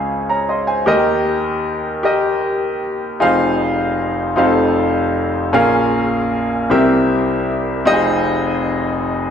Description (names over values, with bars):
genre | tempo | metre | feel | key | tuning
gospel | 52 BPM (dotted quarters) | 6/8 | straight | unclear | A4 = 440 Hz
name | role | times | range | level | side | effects
clear grand piano | solo | 0.0-9.3 s | F1 to C6 | -14 LUFS | equal | none
room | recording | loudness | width
wet recital hall reverb, RT60 1.7 s | none | -14 LUFS | side -8 dB against mid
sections
0.0-9.3 A section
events
none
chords
0.0 Dbmaj7; 0.9 Eb; 3.2 Fm7; 4.4 F7; 5.5 Bbm7; 6.7 C7; 7.9 Fm7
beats
| 0.87 2.04 | 3.20 4.37 | 5.53 6.70 | 7.87 9.03